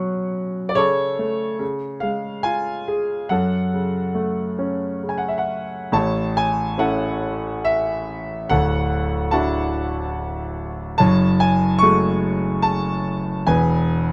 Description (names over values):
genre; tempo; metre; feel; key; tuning
classical, lyrical solo piano; 72 BPM; 3/4; rubato; F# minor, A major from 5.9 s; A4 = 440 Hz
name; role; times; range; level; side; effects
clear concert grand piano; solo; 0.0-14.1 s; D1 to C#6; -21 LUFS; equal; none
room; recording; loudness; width
moderate studio reverb, RT60 0.7 s; none; -21 LUFS; mono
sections
0.0-5.9 A section; 5.9-14.1 B section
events
none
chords
0.0 Bsus2; 0.8 A/C#; 1.6 C#; 3.3 F#m; 5.9 A; 8.5 Dadd9; 11.0 F#madd9; 13.5 E